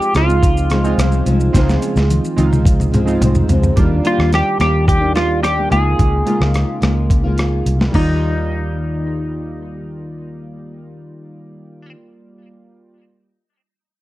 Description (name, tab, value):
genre	indie pop, bedroom pop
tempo	108 BPM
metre	4/4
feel	straight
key	Eb major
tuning	A4 = 440 Hz
part	semi-hollow electric guitar	melody	0.0-11.9 s	Eb4 to Ab4	-20 LUFS	equal	analog chorus, tape echo
part	chorused retro synth keys	accompaniment	0.0-13.0 s	G3 to D5	-24 LUFS	right 4 dB	cassette tape
part	fingerpicked steel-string acoustic guitar	accompaniment	0.0-12.0 s	Db3 to F4	-23 LUFS	left 2 dB	analog chorus, vibrato effect
part	dusty soul sampler-style drum kit	drums	0.0-8.1 s	crash cymbal, hi-hat, kick drum, rim click, shaker, snare drum, toms	-17 LUFS	equal	overdrive
part	vintage muted fingered electric bass	bass	0.1-11.9 s	C2 to Eb2	-17 LUFS	equal	none
room	digital ambience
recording	dry, close 1970s-style studio recording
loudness	-13 LUFS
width	side -16 dB against mid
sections	0.0-3.8 A section; 3.8-8.2 B section; 8.2-10.4 C section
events	drum fill 1.5-3.8, 7.7-8.2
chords	0.0 Dbmaj7; 3.8 Ebmaj7; 5.7 Db6; 7.9 Ebmaj7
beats	0.43 0.99 | 1.54 2.10 2.65 3.21 | 3.77 4.32 4.88 5.43 | 5.99 6.55 7.10 7.66 | 8.22 8.77 9.33 9.89